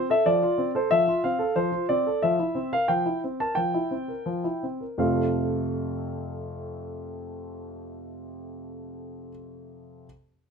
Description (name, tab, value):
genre	classical-period piano sonatina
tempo	82-94 BPM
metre	4/4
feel	rubato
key	F major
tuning	A4 = 440 Hz
part	warm concert grand piano	solo	0.0-10.1 s	F2 to A5	-25 LUFS	equal	none
room	light reverb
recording	minimal, uncompressed stereo recording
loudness	-23 LUFS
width	side -6 dB against mid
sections	0.0-5.0 A section; 5.0-7.8 B section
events	slowing down 0.0-5.0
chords	0.0 F; 2.2 C7/F; 5.0 F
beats	0.26 0.90 1.55 | 2.21 2.88 3.57 4.28 | 5.00 5.71 6.42 7.13